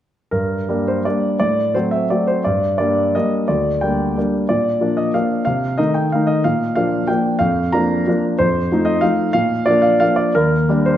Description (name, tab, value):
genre	classical, piano waltz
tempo	163-202 BPM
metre	3/4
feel	rubato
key	G minor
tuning	A4 = 440 Hz
part	clear grand piano	solo	0.3-11.0 s	D2 to Bb5	-15 LUFS	equal	none
room	wet recital hall reverb, RT60 1.3 s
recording	none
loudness	-15 LUFS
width	side -11 dB against mid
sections	0.3-11.0 A section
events	none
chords	0.3 Gm; 1.4 F#dim/A; 2.4 Gm; 4.5 Bb; 5.5 Adim/C; 6.4 Bb; 8.4 F7; 9.3 Bb; 10.3 Ebmaj7